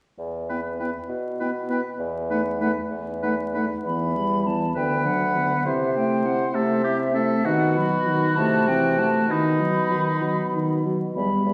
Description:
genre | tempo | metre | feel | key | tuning
quick classical-period movement for wind quintet | 66 BPM (dotted quarters) | 6/8 | rubato | E minor | A4 = 443 Hz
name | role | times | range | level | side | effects
warm bassoon | bass | 0.2-11.5 s | D2 to C3 | -29 LUFS | equal | none
hollow concert flute | melody | 0.5-11.5 s | E5 to B5 | -30 LUFS | equal | none
clear oboe | second line | 0.5-10.7 s | D#4 to C5 | -30 LUFS | equal | none
dark clarinet | accompaniment | 0.5-11.5 s | B3 to F#4 | -32 LUFS | equal | none
mellow French horn | accompaniment | 0.5-11.5 s | D3 to C4 | -28 LUFS | equal | none
room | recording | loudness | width
wet recital hall reverb, RT60 1.5 s | heard from further back in the room, vinyl crackle | -23 LUFS | mono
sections
0.2-3.9 A section; 3.9-11.5 B section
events
none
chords
0.2 E5; 2.0 B7/E; 3.9 Em; 4.8 Bm/D; 5.7 Am/C; 7.5 B; 8.4 Am/C; 9.3 B

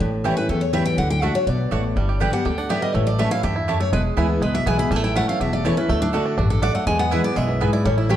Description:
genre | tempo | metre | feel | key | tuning
bluegrass | 244 BPM | 4/4 | straight | D major | A4 = 441 Hz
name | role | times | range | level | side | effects
picked steel-string acoustic guitar | accompaniment | 0.0-8.2 s | E2 to G4 | -23 LUFS | left 2 dB | none
upright bass | bass | 0.0-8.2 s | E1 to E2 | -24 LUFS | equal | none
mandolin | stabs | 0.2-8.2 s | A3 to A5 | -29 LUFS | right 6 dB | tape echo
picked steel-string acoustic guitar | melody | 0.4-8.2 s | D4 to B5 | -25 LUFS | left 1 dB | none
bluegrass banjo | arpeggios | 2.0-8.2 s | E3 to G4 | -27 LUFS | right 4 dB | none
room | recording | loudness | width
wet large studio reverb, RT60 1.3 s | dark, warm production | -18 LUFS | side -11 dB against mid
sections
0.0-8.2 A section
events
none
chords
0.0 A7; 1.0 D; 2.0 G; 2.9 A; 3.9 E; 4.9 A; 5.9 D; 6.9 E

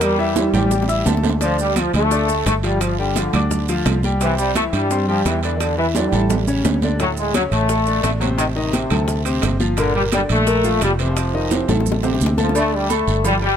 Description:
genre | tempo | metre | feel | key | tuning
latin, salsa | 172 BPM | 4/4 | straight | D minor | A4 = 440 Hz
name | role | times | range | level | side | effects
bright trombone section | melody | 0.0-13.6 s | C3 to A3 | -21 LUFS | left 1 dB | tape echo
bright concert grand piano | accompaniment | 0.0-13.6 s | A2 to E6 | -23 LUFS | left 3 dB | none
fingered electric bass | bass | 0.0-13.6 s | F1 to G2 | -21 LUFS | right 1 dB | none
bongos and cowbell | percussion | 0.0-13.4 s | none | -29 LUFS | left 6 dB | none
congas | percussion | 0.0-13.6 s | none | -26 LUFS | right 1 dB | none
guiro | percussion | 0.0-13.6 s | none | -33 LUFS | right 9 dB | none
maracas | percussion | 0.0-13.4 s | none | -32 LUFS | right 11 dB | none
timbales and agogo bells | percussion | 0.0-13.6 s | none | -27 LUFS | right 11 dB | none
room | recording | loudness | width
light reverb | none | -16 LUFS | side -8 dB against mid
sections
0.0-1.4 A section; 1.4-12.6 B section; 12.6-13.6 C section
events
drum fill 0.4-1.4, 6.0-7.0, 11.5-12.6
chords
0.0 Edim; 0.7 A5; 1.4 Dm; 2.8 G5; 4.2 Cadd9; 5.6 Em7; 6.3 A; 7.0 D5; 8.4 Adim; 9.1 D5; 9.8 Gm11; 11.2 F7; 12.6 D5

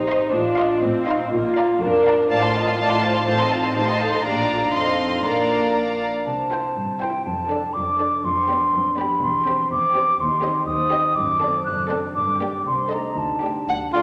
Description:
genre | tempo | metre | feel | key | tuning
cinematic, playful, whimsical film cue | 122 BPM | 2/4 | straight | Bb major, C major from 6.3 s | A4 = 440 Hz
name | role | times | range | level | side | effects
warm studio viola section | accompaniment | 0.0-14.0 s | A3 to F4 | -32 LUFS | equal | none
mellow French horn section | sustained chords | 0.0-6.0 s | Eb4 to Eb5 | -24 LUFS | equal | none
concert harp | arpeggios | 0.0-14.0 s | F2 to Eb5 | -33 LUFS | equal | none
dark studio cello section | bass | 0.0-14.0 s | C2 to C3 | -33 LUFS | equal | none
dark studio double bass section | bass | 0.0-14.0 s | E1 to Eb2 | -40 LUFS | equal | none
dark studio violin section | melody | 0.1-14.0 s | C5 to C6 | -30 LUFS | equal | none
warm studio violin section | second line | 0.1-14.0 s | F#4 to A5 | -29 LUFS | equal | none
mellow hollow silver concert flute | second line | 6.3-14.0 s | F5 to F#6 | -23 LUFS | equal | none
mellow cor anglais | second line | 13.9-14.0 s | F4 | -19 LUFS | equal | none
room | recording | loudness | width
wet scoring stage reverb, RT60 2.0 s | none | -21 LUFS | mono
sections
0.0-6.3 A section; 6.3-14.0 B section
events
none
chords
0.3 F7/A; 1.3 Bb; 2.3 F/A; 3.3 F7/A; 4.3 Bb; 4.8 F7; 5.3 Bb; 6.3 C; 7.3 Dm/F; 8.2 G7/F; 9.2 C/E; 10.2 Cm/Eb; 11.2 D7/F#; 12.2 Gm; 12.7 Adim/C; 13.2 Dsus4

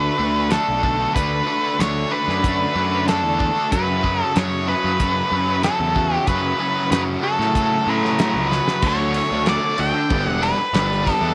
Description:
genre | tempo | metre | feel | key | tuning
classic rock | 94 BPM | 4/4 | straight | unclear | A4 = 440 Hz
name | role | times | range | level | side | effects
octave-fuzz lead guitar | melody | 0.0-11.3 s | A4 to G5 | -23 LUFS | equal | distortion
biting overdriven guitar | riff | 0.0-11.3 s | F#2 to D4 | -27 LUFS | equal | harmonic tremolo
tight distorted guitar | riff | 0.0-11.3 s | F#2 to G4 | -32 LUFS | equal | distortion
fuzz picked electric bass | bass | 0.0-11.3 s | E1 to A2 | -26 LUFS | equal | overdrive
cloth-damped thuddy drum kit | drums | 0.5-11.2 s | crash cymbal, hi-hat, kick drum, ride cymbal, snare drum | -26 LUFS | equal | none
room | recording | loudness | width
light reverb, small room ambience | none | -20 LUFS | mono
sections
0.0-8.8 A section; 8.8-11.3 B section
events
drum fill 8.5-8.8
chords
0.0 D6; 3.7 F#m; 8.8 D; 10.1 G

